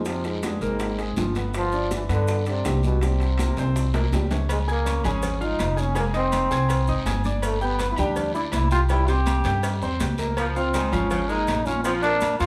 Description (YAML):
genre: latin, salsa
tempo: 163 BPM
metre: 4/4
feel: straight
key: unclear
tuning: A4 = 440 Hz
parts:
  - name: warm trombone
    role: melody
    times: 0.0-12.5 s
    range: G2 to G4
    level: -29 LUFS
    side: equal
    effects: none
  - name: upright bass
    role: bass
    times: 0.0-12.5 s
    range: F1 to G2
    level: -27 LUFS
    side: equal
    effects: none
  - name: clear baby grand piano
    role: accompaniment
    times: 0.1-12.5 s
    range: F3 to Ab6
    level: -31 LUFS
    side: equal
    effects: none
  - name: bongos and cowbell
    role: percussion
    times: 0.1-12.5 s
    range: none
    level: -37 LUFS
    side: equal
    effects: none
  - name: congas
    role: percussion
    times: 0.1-12.5 s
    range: none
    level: -36 LUFS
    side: equal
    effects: none
  - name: guiro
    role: percussion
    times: 0.1-12.5 s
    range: none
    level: -43 LUFS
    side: equal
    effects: none
  - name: maracas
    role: percussion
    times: 0.1-12.5 s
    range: none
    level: -46 LUFS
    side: equal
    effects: none
  - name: timbales and agogo bells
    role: percussion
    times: 0.1-12.4 s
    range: none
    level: -37 LUFS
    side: equal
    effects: none
  - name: warm saxophone section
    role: second line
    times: 10.4-12.5 s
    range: Db3 to Ab3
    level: -35 LUFS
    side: equal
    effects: none
room: light reverb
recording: studio ambience, faint mains hum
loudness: -23 LUFS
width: mono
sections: 0.0-4.5 A section; 4.5-12.5 B section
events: drum fill 3.6-4.5, 9.5-10.4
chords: 0.1 G7b9; 1.5 G7; 3.0 C5; 4.5 Db69; 6.0 Fm7; 7.4 G; 8.9 C7(no3); 10.4 Db6; 11.9 Bb